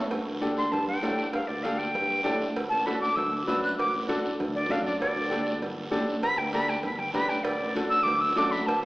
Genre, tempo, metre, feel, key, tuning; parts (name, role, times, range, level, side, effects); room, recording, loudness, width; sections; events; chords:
latin, cumbia; 196 BPM; 4/4; straight; A4 = 440 Hz
clear upright piano; accompaniment; 0.0-8.6 s; D4 to B4; -31 LUFS; equal
modern bright fingered electric bass; bass; 0.0-8.8 s; G1 to A2; -34 LUFS; equal
congas; percussion; 0.1-8.8 s; -38 LUFS; equal
cowbell and timbales; percussion; 0.1-8.8 s; -36 LUFS; right 2 dB
guiro; percussion; 0.1-8.8 s; -42 LUFS; right 2 dB
jazz flute; melody; 0.6-8.8 s; D5 to F#6; -27 LUFS; equal
wet recital hall reverb, RT60 1.5 s; recorded in a church or concert hall, small speaker sound; -25 LUFS; side -20 dB against mid
0.1-8.8 A section
flute solo 0.1-8.8
0.1 Gsus2; 2.6 D; 5.0 Gsus2; 7.5 D